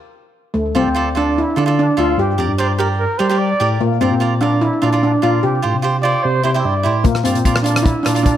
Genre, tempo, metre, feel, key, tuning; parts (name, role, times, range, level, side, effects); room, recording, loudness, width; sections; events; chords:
calypso; 148 BPM; 4/4; straight; A4 = 438 Hz
steel pan; melody; 0.5-8.4 s; A3 to G4; -17 LUFS; left 1 dB; slapback echo
tine electric piano; bass; 0.5-8.4 s; C2 to G3; -19 LUFS; equal; medium stereo tremolo
cavaquinho; accompaniment; 0.7-8.3 s; E4 to E5; -21 LUFS; right 4 dB
mellow trumpet; second line; 2.6-7.0 s; Bb4 to E5; -20 LUFS; right 2 dB; slapback echo
damped 70s drum kit; drums; 7.0-8.4 s; hi-hat, kick drum, rim click; -17 LUFS; equal
moderate lush hall reverb, RT60 1.7 s, small room ambience; -14 LUFS; side -11 dB against mid
0.6-8.4 A section
stop 0.0-0.6
0.0 N.C.; 0.6 Dm7; 2.2 Gm; 3.8 Bb; 5.4 Csus4; 6.2 C; 7.0 Bb